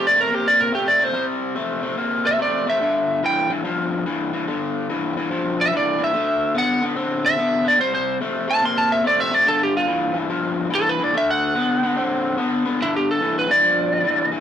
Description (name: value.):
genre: blues.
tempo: 144 BPM.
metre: 4/4.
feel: swing 66% on 8ths.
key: G mixolydian.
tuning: A4 = 442 Hz.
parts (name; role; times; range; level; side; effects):
lightly driven lead guitar; melody; 0.0-14.3 s; E4 to C6; -18 LUFS; right 1 dB; none.
crunchy overdriven guitar; riff; 0.0-14.4 s; G2 to C4; -22 LUFS; left 2 dB; none.
room: moderate studio reverb, RT60 0.5 s.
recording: rough rehearsal-room recording, warm saturation.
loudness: -18 LUFS.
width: side -9 dB against mid.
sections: 0.0-12.8 A section; 12.8-14.4 A section.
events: lead electric guitar solo 0.0-12.8, 12.8-14.4.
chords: 0.0 C5; 2.8 G5; 6.1 Dsus2; 7.8 C5; 9.5 G5; 11.1 D6; 12.8 G5.